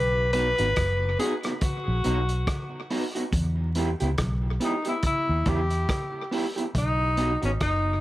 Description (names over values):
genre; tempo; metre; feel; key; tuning
roots reggae; 70 BPM; 4/4; swing 58% on 16ths; B major; A4 = 440 Hz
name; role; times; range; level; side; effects
warm tenor saxophone; melody; 0.0-8.0 s; C#4 to B4; -27 LUFS; left 1 dB; tape echo
vintage muted fingered electric bass; bass; 0.0-8.0 s; F#1 to E2; -26 LUFS; equal; none
electric guitar at the edge of break-up; accompaniment; 0.3-7.5 s; B3 to G4; -31 LUFS; right 2 dB; tape echo
crunchy breakbeat drum kit; drums; 0.3-7.8 s; hi-hat, kick drum, rim click; -30 LUFS; equal; tape echo
room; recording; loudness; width
light reverb, small room reverb; vinyl crackle; -23 LUFS; side -16 dB against mid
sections
0.0-6.7 A section; 6.7-8.0 B section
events
none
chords
0.0 B; 3.3 Em; 6.7 B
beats
0.77 1.62 2.47 | 3.33 4.18 5.04 5.89 | 6.75 7.60